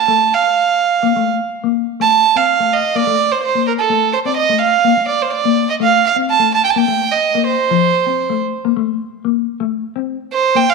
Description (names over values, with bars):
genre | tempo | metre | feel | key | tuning
highlife | 126 BPM | 4/4 | straight | unclear | A4 = 440 Hz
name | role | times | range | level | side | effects
warm violin | melody | 0.0-10.7 s | A4 to A5 | -13 LUFS | right 7 dB | slapback echo
mellow electric guitar | accompaniment | 0.1-10.7 s | F3 to C4 | -19 LUFS | left 16 dB | phaser
room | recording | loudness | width
wet echo chamber reverb, RT60 1.9 s, small room reverb | 1960s-style stereo with parts hard left and right | -13 LUFS | side -4 dB against mid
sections
0.0-5.8 A section; 5.8-10.7 B section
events
none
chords
0.1 N.C.; 2.0 Adim; 2.9 Amadd11; 3.9 Adim; 4.8 Bb; 5.8 Am; 6.8 Am7b5; 7.7 F; 8.7 N.C.; 9.6 Am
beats
| 0.09 0.56 1.04 1.52 | 1.99 2.47 2.94 3.42 | 3.90 4.37 4.85 5.33 | 5.80 6.28 6.75 7.23 | 7.70 8.18 8.65 9.13 | 9.60 10.08 10.55